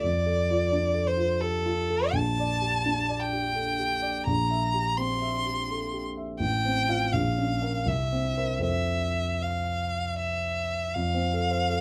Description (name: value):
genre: classical, romantic duo for violin and grand piano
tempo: 76-88 BPM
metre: 3/4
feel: rubato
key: F major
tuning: A4 = 440 Hz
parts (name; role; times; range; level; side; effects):
- clear violin; melody; 0.0-11.8 s; A4 to C6; -30 LUFS; equal; none
- warm concert grand piano; accompaniment; 0.0-11.8 s; A1 to F5; -30 LUFS; equal; none
room: moderate studio reverb, RT60 0.5 s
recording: dark, warm production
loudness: -27 LUFS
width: mono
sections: 0.0-11.0 A section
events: none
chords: 0.0 Dm/F; 2.1 Gm/Bb; 4.3 C7/Bb; 6.4 F/A; 7.1 Bbm; 7.9 C7; 8.6 F